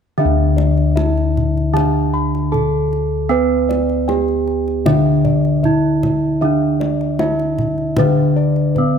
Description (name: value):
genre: Javanese gamelan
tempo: 77 BPM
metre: 4/4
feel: straight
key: D pelog barang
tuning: A4 = 442 Hz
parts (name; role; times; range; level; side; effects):
- gamelan-type bronze metallophone; melody; 0.2-9.0 s; B3+20c to B4+20c; -20 LUFS; right 5 dB; none
- gamelan-type bronze metallophone; accompaniment; 0.2-9.0 s; D3 to B3+20c; -19 LUFS; equal; none
- gamelan-type bossed gongs; arpeggios; 0.2-9.0 s; B4+20c to B5+20c; -24 LUFS; left 2 dB; none
- gamelan-type bossed gongs; bass; 0.2-9.0 s; D2 to B4+20c; -19 LUFS; left 3 dB; none
- kendang; percussion; 0.6-8.9 s; none; -24 LUFS; right 1 dB; none
room: light reverb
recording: close, detailed microphones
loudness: -14 LUFS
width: side -7 dB against mid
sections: 0.2-9.0 A section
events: none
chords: none